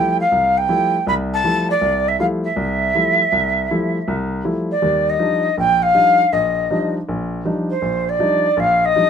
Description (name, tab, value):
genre	jazz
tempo	160 BPM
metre	4/4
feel	swing 66% on 8ths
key	Eb lydian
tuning	A4 = 441 Hz
part	reedy jazz flute	melody	0.0-9.1 s	C5 to Cb6	-16 LUFS	equal	none
part	warm baby grand piano	accompaniment	0.0-9.1 s	Bb1 to E4	-21 LUFS	left 1 dB	none
room	moderate club reverb, RT60 0.6 s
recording	close, detailed microphones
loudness	-15 LUFS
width	side -7 dB against mid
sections	0.0-9.1 A section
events	none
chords	0.0 Fmaj9; 4.8 Ebmaj9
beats	| 0.33 0.70 1.07 1.45 | 1.82 2.20 2.57 2.95 | 3.32 3.70 4.07 4.45 | 4.82 5.20 5.57 5.95 | 6.32 6.69 7.07 7.44 | 7.82 8.19 8.57 8.94